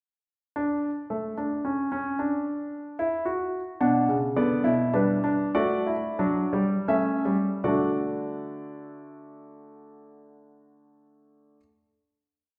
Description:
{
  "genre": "classical, baroque-style 3-part fugue for grand piano",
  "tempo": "76-112 BPM",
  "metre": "3/4",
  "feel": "straight",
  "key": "D major",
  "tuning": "A4 = 438 Hz",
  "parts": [
    { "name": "warm grand piano", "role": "solo", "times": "0.6-11.6 s", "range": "B2 to F#5", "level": "-27 LUFS", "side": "equal", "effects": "none" }
  ],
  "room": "wet recital hall reverb, RT60 1.5 s",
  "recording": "recorded in a church or concert hall",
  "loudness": "-26 LUFS",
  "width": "mono",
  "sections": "0.6-7.6 exposition; 7.6-12.3 final chord",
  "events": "slowing down 3.0-7.6",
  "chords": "0.6 N.C.; 3.8 Bm; 4.9 G; 5.6 D/A; 6.9 A7; 7.6 D"
}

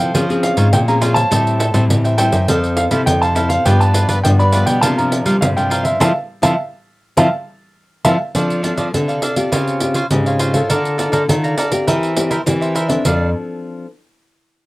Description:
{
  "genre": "samba and choro",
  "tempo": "102 BPM",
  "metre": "4/4",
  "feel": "straight",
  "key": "F major",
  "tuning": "A4 = 437 Hz",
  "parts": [
    { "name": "warm baby grand piano", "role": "melody", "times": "0.0-8.1 s", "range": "E5 to B5", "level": "-18 LUFS", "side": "equal", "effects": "cassette tape" },
    { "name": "cavaquinho", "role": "accompaniment", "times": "0.0-13.3 s", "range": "D4 to Bb5", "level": "-21 LUFS", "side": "right 1 dB", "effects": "cassette tape" },
    { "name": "nylon-string guitar", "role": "accompaniment", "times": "0.0-13.9 s", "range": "G2 to A4", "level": "-21 LUFS", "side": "left 2 dB", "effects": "cassette tape" },
    { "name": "nylon-string guitar", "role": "bass", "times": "0.0-13.3 s", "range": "F2 to G3", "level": "-18 LUFS", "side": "equal", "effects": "none" },
    { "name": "pandeiro", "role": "percussion", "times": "0.1-13.2 s", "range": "none", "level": "-20 LUFS", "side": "right 2 dB", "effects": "none" }
  ],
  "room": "light reverb",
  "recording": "home recording on cassette",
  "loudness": "-13 LUFS",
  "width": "side -20 dB against mid",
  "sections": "0.0-8.4 A section; 8.4-13.1 B section; 13.1-14.7 C section",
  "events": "band accent 6.0-8.4",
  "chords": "0.2 Dbmaj7; 1.3 Am7; 2.5 Fmaj7; 3.7 G7; 4.8 C9sus4; 6.0 Fmaj7(no3); 8.4 F6; 9.5 Dbmaj7#11; 10.7 Bbmaj7/D; 11.9 C7/E; 13.1 F6"
}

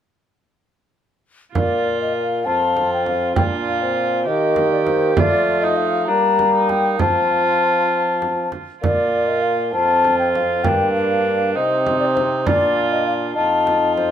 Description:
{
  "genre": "classical, renaissance-style consort dance",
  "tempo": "66 BPM (dotted quarters)",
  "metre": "6/8",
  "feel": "straight",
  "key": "Bb major",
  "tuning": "A4 = 440 Hz",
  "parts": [
    { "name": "rich viola", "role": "second line", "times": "1.5-14.1 s", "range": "D4 to G4", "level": "-24 LUFS", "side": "right 6 dB", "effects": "none" },
    { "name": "mellow hollow baroque flute", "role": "melody", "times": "1.6-14.1 s", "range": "C5 to Bb5", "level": "-20 LUFS", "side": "left 4 dB", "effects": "none" },
    { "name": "mellow bassoon", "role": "accompaniment", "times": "1.6-14.1 s", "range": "A3 to Eb4", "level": "-21 LUFS", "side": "equal", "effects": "none" },
    { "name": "brilliant trombone", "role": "bass", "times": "1.6-14.1 s", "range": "F2 to G3", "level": "-25 LUFS", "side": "right 2 dB", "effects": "none" },
    { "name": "frame drum", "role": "percussion", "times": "1.6-14.1 s", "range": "none", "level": "-23 LUFS", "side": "right 4 dB", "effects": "none" }
  ],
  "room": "moderate large studio reverb, RT60 1.3 s",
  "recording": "minimal, uncompressed stereo recording",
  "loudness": "-16 LUFS",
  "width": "side -9 dB against mid",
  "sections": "1.6-14.1 A section",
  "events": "none",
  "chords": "1.6 Bb; 2.5 F; 3.4 Bb; 4.3 Eb; 5.2 F; 6.1 Gm; 7.0 F; 8.8 Bb; 9.7 F; 10.7 Gm; 11.6 Cm; 12.5 Bb; 13.4 F7"
}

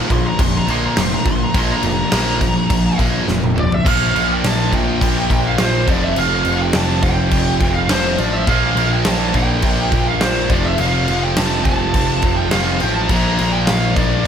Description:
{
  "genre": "hard rock",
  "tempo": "104 BPM",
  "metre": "4/4",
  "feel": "straight",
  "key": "unclear",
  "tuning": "A4 = 443 Hz",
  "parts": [
    { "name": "distorted electric guitar", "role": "riff", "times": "0.0-14.3 s", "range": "F2 to F4", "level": "-25 LUFS", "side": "equal", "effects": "distortion" },
    { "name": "sludgy distorted guitar", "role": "riff", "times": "0.0-14.3 s", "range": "F2 to Bb3", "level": "-22 LUFS", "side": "left 9 dB", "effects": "overdrive" },
    { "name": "tight distorted guitar", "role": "riff", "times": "0.0-14.3 s", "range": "F2 to Bb3", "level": "-23 LUFS", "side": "right 11 dB", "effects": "distortion" },
    { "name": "bluesy overdriven lead guitar", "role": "melody", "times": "0.1-14.3 s", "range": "C5 to C6", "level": "-21 LUFS", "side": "right 1 dB", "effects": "distortion, slapback echo" },
    { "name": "fuzz picked electric bass", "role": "bass", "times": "0.1-14.2 s", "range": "F1 to Bb1", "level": "-21 LUFS", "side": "equal", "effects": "overdrive" },
    { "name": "huge arena drum kit", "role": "drums", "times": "0.1-14.1 s", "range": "crash cymbal, kick drum, snare drum, toms", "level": "-19 LUFS", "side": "equal", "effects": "none" }
  ],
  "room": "light reverb, small room ambience",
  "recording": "none",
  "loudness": "-14 LUFS",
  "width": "side -8 dB against mid",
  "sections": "0.0-3.9 A section; 3.9-14.3 B section",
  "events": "lead electric guitar solo 0.0-3.9; drum fill 3.3-3.9",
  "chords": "0.0 Bb; 5.9 F; 8.5 Bb; 10.5 F; 13.1 Bb"
}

